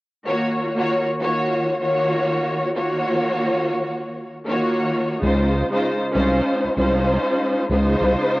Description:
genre	hip hop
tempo	97 BPM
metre	4/4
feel	swing 58% on 16ths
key	Eb dorian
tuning	A4 = 438 Hz
part	warm studio string section	accompaniment	0.3-8.4 s	Db3 to Db5	-19 LUFS	equal	cassette tape, high-pass filter, low-pass filter
part	growling FM bass	bass	5.2-8.2 s	C2 to Db2	-20 LUFS	equal	none
room	light reverb, studio ambience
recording	home recording on cassette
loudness	-18 LUFS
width	side -20 dB against mid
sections	0.3-8.4 A section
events	none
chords	0.3 Ebm9; 5.2 Dbmaj7

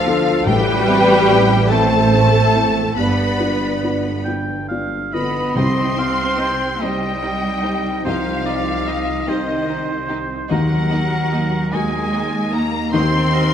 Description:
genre	cinematic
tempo	48 BPM (dotted quarters)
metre	6/8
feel	uneven beats, rubato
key	C minor from 5.6 s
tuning	A4 = 441 Hz
part	rich symphonic violin section	melody	0.0-13.5 s	Eb5 to C6	-25 LUFS	left 2 dB	none
part	mellow flute section	second line	0.0-13.5 s	A4 to C6	-24 LUFS	left 1 dB	none
part	rich symphonic violin section	second line	0.0-13.4 s	Gb4 to B5	-27 LUFS	left 3 dB	none
part	dark baby grand piano	accompaniment	0.0-13.5 s	C2 to D5	-22 LUFS	left 2 dB	none
part	rich symphonic viola section	accompaniment	0.0-13.4 s	Bb3 to B4	-26 LUFS	right 2 dB	none
part	mellow French horn section	sustained chords	0.0-13.5 s	F3 to Eb4	-25 LUFS	left 3 dB	none
part	rich symphonic cello section	bass	0.0-13.5 s	Eb3 to C4	-23 LUFS	right 3 dB	none
part	rich symphonic double bass section	bass	0.0-13.5 s	G1 to Eb2	-24 LUFS	right 4 dB	none
part	timpani	percussion	0.5-1.7, 5.6-6.8 s	A2 to C3	-24 LUFS	left 1 dB	none
part	warm oboe	second line	4.2-13.5 s	Bb4 to G5	-26 LUFS	right 1 dB	none
room	wet scoring stage reverb, RT60 1.5 s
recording	none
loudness	-15 LUFS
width	side -8 dB against mid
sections	0.0-5.6 A section; 5.6-13.5 B section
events	none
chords	0.5 Amadd9; 3.0 G7; 5.6 Cm; 10.5 Ebm

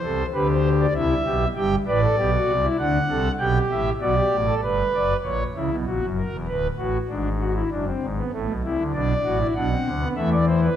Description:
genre	classical, baroque-style 3-part fugue for pipe organ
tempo	98 BPM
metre	3/4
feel	straight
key	unclear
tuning	A4 = 440 Hz
part	pipe organ, foundations	solo	0.0-10.8 s	D1 to G5	-20 LUFS	equal	none
room	wet recital hall reverb, RT60 1.8 s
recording	dark, warm production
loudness	-20 LUFS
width	side -10 dB against mid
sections	0.0-5.3 A section; 5.3-10.8 B section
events	none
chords	0.0 C; 1.6 G; 2.8 D7; 3.4 G; 5.3 F#7/A#; 6.5 Bm/D; 7.1 E7/G#; 8.3 Am; 8.9 Bm7; 10.2 E5

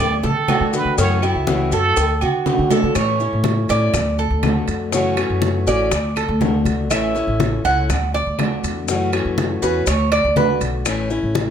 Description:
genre	latin, Cuban son and guajira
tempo	122 BPM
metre	4/4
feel	straight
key	unclear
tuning	A4 = 440 Hz
part	trumpet with plunger mute	melody	0.0-2.2 s	A4 to D5	-21 LUFS	right 6 dB	none
part	picked acoustic archtop guitar	accompaniment	0.0-11.5 s	C#3 to F#4	-22 LUFS	left 3 dB	none
part	Cuban tres	arpeggios	0.0-10.6 s	C#4 to F#5	-22 LUFS	right 3 dB	none
part	upright bass	bass	0.0-11.5 s	A1 to D3	-22 LUFS	equal	none
part	congas	percussion	0.2-11.5 s	none	-26 LUFS	left 2 dB	none
part	cowbell and bongos	percussion	0.2-11.5 s	none	-28 LUFS	left 8 dB	none
part	maracas	percussion	0.2-11.5 s	none	-31 LUFS	left 7 dB	none
part	claves	percussion	0.5-11.1 s	none	-35 LUFS	left 6 dB	none
part	timbales and agogo bells	percussion	0.5-11.5 s	none	-26 LUFS	right 5 dB	none
room	light reverb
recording	close, detailed microphones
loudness	-16 LUFS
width	side -8 dB against mid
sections	0.0-3.0 A section; 3.0-11.5 B section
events	drum fill 2.5-3.0; Cuban tres solo 3.0-11.5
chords	0.0 D; 1.0 F#m7; 2.0 D; 3.0 A; 3.9 D; 4.9 F#m7; 5.9 D; 6.9 A; 7.9 D; 8.9 F#m7; 9.9 D; 10.9 A

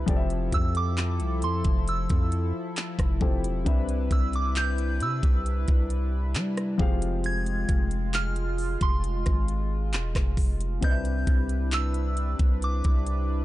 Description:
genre	contemporary R&B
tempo	67 BPM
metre	4/4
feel	straight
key	unclear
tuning	A4 = 440 Hz
part	warm baby grand piano	accompaniment	0.0-13.4 s	C3 to F5	-33 LUFS	left 6 dB	none
part	chorused pulse-width pad	sustained chords	0.0-13.4 s	C3 to B4	-35 LUFS	left 1 dB	none
part	long sustained 808-style bass	bass	0.0-13.4 s	E1 to G3	-27 LUFS	equal	none
part	trap drum kit	drums	0.1-13.3 s	handclaps, hi-hat, kick drum, rim click	-25 LUFS	equal	none
part	soft synth bell	melody	0.5-13.4 s	C6 to Ab6	-33 LUFS	right 3 dB	chorus, ping-pong delay
room	little or no reverb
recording	dark, warm production, nothing above 10.6 kHz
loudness	-24 LUFS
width	side -16 dB against mid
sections	0.0-13.4 A section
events	none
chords	0.1 Fmaj7; 3.7 Cmaj9; 6.8 Fmadd9; 10.8 Cmaj9

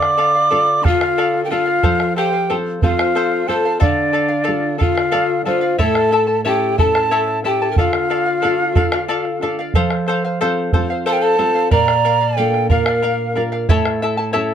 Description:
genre	andean folk, Andean ensemble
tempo	61 BPM (dotted quarters)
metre	6/8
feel	straight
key	D minor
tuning	A4 = 439 Hz
part	mellow quena	melody	0.0-13.4 s	D5 to D6	-18 LUFS	right 3 dB	none
part	breathy pan flute	second line	0.0-13.4 s	D4 to D5	-20 LUFS	left 5 dB	none
part	charango	accompaniment	0.0-14.5 s	E4 to A5	-21 LUFS	left 2 dB	none
part	nylon-string guitar	accompaniment	0.0-14.5 s	A2 to D5	-23 LUFS	right 2 dB	none
part	bombo	percussion	0.0-14.1 s	none	-18 LUFS	right 2 dB	none
room	light reverb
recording	none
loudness	-14 LUFS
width	side -9 dB against mid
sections	0.0-5.8 A section; 5.8-14.5 A section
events	nylon-string guitar fill 4.8-5.8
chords	0.0 Dm; 1.8 F; 3.8 Dm; 5.8 A; 7.8 Dm; 9.7 F; 11.7 Bb; 13.7 A

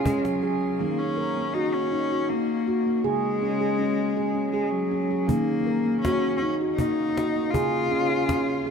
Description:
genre	world meditative, meditative tuned percussion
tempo	80 BPM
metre	3/4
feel	straight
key	Eb minor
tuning	A4 = 438 Hz
part	rich cello	melody	0.0-8.7 s	Gb3 to F4	-27 LUFS	left 4 dB	shimmer reverb, tape echo
part	handpan	arpeggios	0.0-8.7 s	Db3 to Bb4	-24 LUFS	right 2 dB	none
part	cajon	percussion	0.1-0.5, 5.3-8.5 s	none	-32 LUFS	left 1 dB	none
room	wet cathedral reverb, RT60 4.6 s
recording	none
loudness	-22 LUFS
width	side -6 dB against mid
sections	0.8-8.7 A section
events	none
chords	0.0 Db5; 0.8 Ebm; 3.0 Db5; 5.3 Ebm; 7.5 Db

